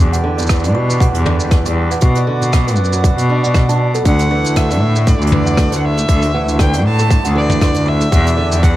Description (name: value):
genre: folktronica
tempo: 118 BPM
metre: 4/4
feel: swing 56% on 16ths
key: D major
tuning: A4 = 441 Hz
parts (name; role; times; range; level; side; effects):
- hand-pumped harmonium; sustained chords; 0.0-8.8 s; D3 to D5; -25 LUFS; left 1 dB; none
- fingerpicked old ladder-braced acoustic guitar; arpeggios; 0.0-8.8 s; B2 to D4; -22 LUFS; right 1 dB; digital delay
- clear cello; bass; 0.0-8.8 s; D2 to B2; -15 LUFS; equal; none
- soft brush drum kit; drums; 0.0-8.7 s; hi-hat, rim click, shaker, toms; -22 LUFS; right 1 dB; none
- kalimba; second line; 0.1-8.5 s; A4 to D6; -24 LUFS; right 6 dB; digital delay
- electronic kick drum; drums; 0.5-8.7 s; none; -14 LUFS; equal; overdrive
- dark violin; melody; 4.1-8.8 s; D5 to A5; -21 LUFS; equal; digital delay
room: little or no reverb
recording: dark, warm production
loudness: -12 LUFS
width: side -15 dB against mid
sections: 0.0-8.8 A section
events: none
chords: 0.0 Em7; 2.0 Bm; 4.1 Dsus2; 8.1 Em7